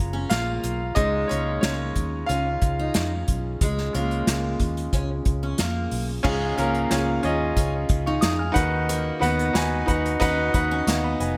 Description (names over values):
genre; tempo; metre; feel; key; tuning
piano-driven pop; 91 BPM; 4/4; straight; unclear; A4 = 439 Hz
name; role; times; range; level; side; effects
bright concert grand piano; accompaniment; 0.0-11.4 s; G#2 to E#6; -28 LUFS; equal; none
glass harmonica; sustained chords; 0.0-11.4 s; C#4 to A#5; -38 LUFS; equal; none
vintage muted fingered electric bass; bass; 0.0-11.4 s; E#1 to E#2; -30 LUFS; equal; none
picked steel-string acoustic guitar; riff; 0.1-11.3 s; G#3 to D#4; -33 LUFS; equal; subtle chorus
unplugged drum kit; drums; 0.3-11.4 s; crash cymbal, hi-hat, kick drum, snare drum; -28 LUFS; equal; none
room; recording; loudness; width
moderate plate reverb, RT60 2.6 s; bright 1980s-style digital production; -24 LUFS; mono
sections
0.0-6.3 A section; 6.3-11.4 B section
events
grand piano solo 0.0-6.3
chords
0.0 F#maj7; 1.0 C#; 8.6 B/D#